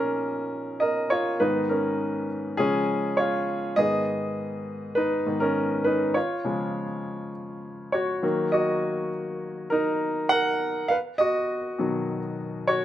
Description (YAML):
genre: pop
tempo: 101 BPM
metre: 4/4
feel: straight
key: unclear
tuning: A4 = 440 Hz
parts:
  - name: clear baby grand piano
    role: solo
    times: 0.0-12.8 s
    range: Ab2 to Gb5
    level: -24 LUFS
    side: equal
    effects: none
room: little or no reverb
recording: recorded outdoors, with no room sound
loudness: -24 LUFS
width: side -12 dB against mid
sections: 0.0-3.8 A section; 3.8-12.8 B section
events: grand piano solo 0.0-3.8, 3.8-12.8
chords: 0.0 Bbsus4; 1.4 Abm; 2.6 Db; 3.8 Abm; 6.2 Db; 8.2 Ebm; 10.9 B